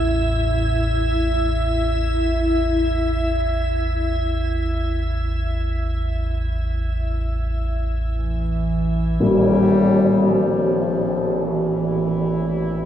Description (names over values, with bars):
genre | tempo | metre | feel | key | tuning
dark ambient drone | free time | none | none | unclear | A4 = 440 Hz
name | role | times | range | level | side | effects
deep rumbling drone | drone | 0.0-12.9 s | A1 to E2 | -23 LUFS | equal | built-in reverb, wide subtle chorus
icy glass pad | texture | 0.0-9.2 s | E4 to E5 | -25 LUFS | equal | chorus, built-in reverb
dark bass clarinet | melody | 8.1-12.9 s | E3 to G3 | -20 LUFS | equal | analog delay
sweeping resonant pad | sustained chords | 9.2-12.9 s | A2 to E4 | -35 LUFS | right 2 dB | chorus
tam-tam | percussion | 9.2-9.4 s | none | -19 LUFS | left 1 dB | low-pass filter on cymbals, analog delay
room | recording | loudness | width
wet echo chamber reverb, RT60 2.3 s | echo-heavy mix, cassette tape, studio reverb | -18 LUFS | side -10 dB against mid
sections
0.0-9.2 A section; 9.2-12.9 B section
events
fade-in on analog synth pad 9.2-12.9; filter sweep on synth drone 9.2-12.9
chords
0.0 A5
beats
free time